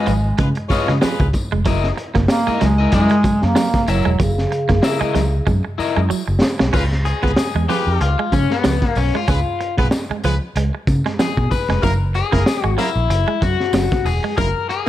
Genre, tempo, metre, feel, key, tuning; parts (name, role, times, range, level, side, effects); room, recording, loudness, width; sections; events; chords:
funk; 94 BPM; 4/4; swing 56% on 16ths; Db mixolydian; A4 = 440 Hz
mellow bass clarinet; melody; 0.0-6.1 s; Db3 to Bb3; -19 LUFS; right 1 dB
warm horn section; second line; 0.0-1.3, 6.7-14.9 s; Bb3 to Db5; -26 LUFS; equal
electric guitar at the edge of break-up; accompaniment; 0.0-14.9 s; Cb4 to Fb5; -22 LUFS; left 7 dB; spring reverb
semi-hollow electric guitar; riff; 0.0-14.7 s; F3 to Db4; -26 LUFS; right 8 dB
vintage muted fingered electric bass; bass; 0.1-14.5 s; Fb1 to Db3; -19 LUFS; equal
crunchy breakbeat drum kit; drums; 0.1-14.9 s; crash cymbal, hi-hat, kick drum, snare drum; -20 LUFS; equal
tambourine; percussion; 0.1-14.5 s; -39 LUFS; left 6 dB
light reverb, small room ambience; -15 LUFS; side -13 dB against mid
0.0-6.7 A section; 6.7-14.9 B section
drum fill 5.5-6.7; clean electric guitar solo 6.7-14.9
0.0 Db9; 1.7 Gb13; 6.7 Db7; 11.8 Gb9